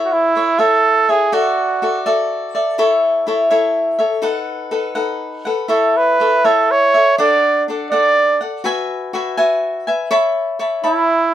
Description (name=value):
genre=mexican folk, mariachi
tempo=82 BPM (dotted quarters)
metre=6/8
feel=rubato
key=A major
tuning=A4 = 440 Hz
part: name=cavaquinho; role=accompaniment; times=0.0-11.3 s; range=D4 to B5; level=-16 LUFS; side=left 2 dB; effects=none
part: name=clear trumpet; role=melody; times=0.1-2.1, 5.7-8.4, 10.8-11.3 s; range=E4 to D5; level=-14 LUFS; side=right 3 dB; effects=none
room=moderate studio reverb, RT60 0.7 s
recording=minimal, uncompressed stereo recording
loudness=-14 LUFS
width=side -11 dB against mid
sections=0.0-11.3 A section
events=none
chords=0.0 A; 1.3 Dadd9; 2.8 A; 4.2 B7; 5.7 A; 7.2 D; 8.7 Eadd9; 10.1 Aadd9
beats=0.59 | 1.33 2.07 | 2.79 3.50 | 4.22 4.96 | 5.70 6.45 | 7.19 7.93 | 8.66 9.38 | 10.11 10.84